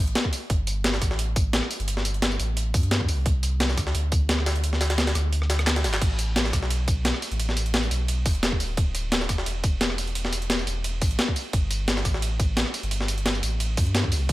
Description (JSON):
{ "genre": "liquid drum and bass", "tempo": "174 BPM", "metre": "4/4", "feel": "swing 54% on 16ths", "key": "unclear", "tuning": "A4 = 440 Hz", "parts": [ { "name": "warm sub bass", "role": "bass", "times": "0.0-14.3 s", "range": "D1 to G2", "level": "-26 LUFS", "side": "equal", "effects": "none" }, { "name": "jungle sampler-style drum kit", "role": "drums", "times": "0.1-14.3 s", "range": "hi-hat, snare drum", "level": "-31 LUFS", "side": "equal", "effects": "high-pass filter on snare, high-pass filter on hats, high-pass filter on room" }, { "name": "breakbeat sampler-style drum kit", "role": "drums", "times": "0.2-14.3 s", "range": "crash cymbal, handclaps, hi-hat, ride cymbal, rim click, snare drum, tambourine", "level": "-27 LUFS", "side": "equal", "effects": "none" }, { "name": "electronic kick drum", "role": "drums", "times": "0.2-14.3 s", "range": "none", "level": "-24 LUFS", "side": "equal", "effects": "none" } ], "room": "little or no reverb", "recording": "none", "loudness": "-22 LUFS", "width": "side -17 dB against mid", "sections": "0.0-14.3 A section", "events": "kick drops out 4.6-6.0; drum fill 5.7-6.0", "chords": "none" }